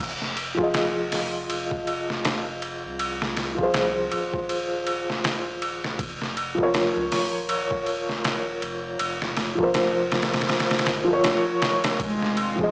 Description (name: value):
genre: trip hop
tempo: 80 BPM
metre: 4/4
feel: swing 59% on 16ths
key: F minor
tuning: A4 = 442 Hz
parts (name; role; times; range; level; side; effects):
- round analog bass; bass; 0.0-12.7 s; Eb1 to Db2; -41 LUFS; equal; none
- trip hop sampler-style drum kit; drums; 0.2-12.7 s; hi-hat, kick drum, ride cymbal, snare drum; -26 LUFS; equal; none
- felt-muted upright piano; accompaniment; 0.5-12.7 s; F3 to Eb5; -24 LUFS; equal; tremolo, vintage 12-bit sampler grit, tape echo
- warm cello; melody; 12.0-12.5 s; Ab3; -26 LUFS; equal; none
- rich studio string section; sustained chords; 12.0-12.7 s; Eb3 to F4; -34 LUFS; equal; none
room: light reverb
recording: dry, gritty hardware recording, cassette tape, small speaker sound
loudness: -22 LUFS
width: side -27 dB against mid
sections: 0.0-12.7 A section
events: none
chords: 0.0 Fm7; 6.0 Bbm; 12.0 Fm7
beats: 0.74 1.49 2.24 | 2.99 3.74 4.49 5.24 | 5.99 6.74 7.49 8.24 | 8.99 9.74 10.49 11.24 | 11.99